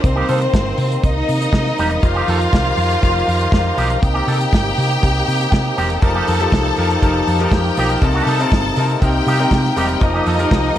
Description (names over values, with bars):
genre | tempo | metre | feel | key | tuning
disco | 120 BPM | 4/4 | straight | C dorian | A4 = 440 Hz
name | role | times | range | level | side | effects
clear studio string section | second line | 0.0-10.8 s | C4 to A5 | -20 LUFS | left 1 dB | none
electric guitar with an envelope filter | accompaniment | 0.0-10.7 s | Eb3 to A4 | -24 LUFS | right 3 dB | warbly pitch drift
tonewheel organ | sustained chords | 0.0-10.8 s | C3 to Bb4 | -23 LUFS | equal | overdrive, fast rotary speaker
hollow-body short-scale fingered electric bass | bass | 0.0-10.8 s | E1 to C3 | -20 LUFS | equal | none
warm soul drum kit | drums | 0.0-10.8 s | hi-hat, kick drum, snare drum | -19 LUFS | equal | gated reverb
clear baby grand piano | accompaniment | 6.0-10.8 s | C3 to Bb4 | -20 LUFS | left 2 dB | none
room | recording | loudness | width
light reverb, small room ambience | none | -14 LUFS | side -11 dB against mid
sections
0.0-10.8 A section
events
none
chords
0.0 Cm7; 2.0 F9sus4; 4.0 Cm7; 6.0 F9sus4; 8.0 Cm7; 10.0 F9sus4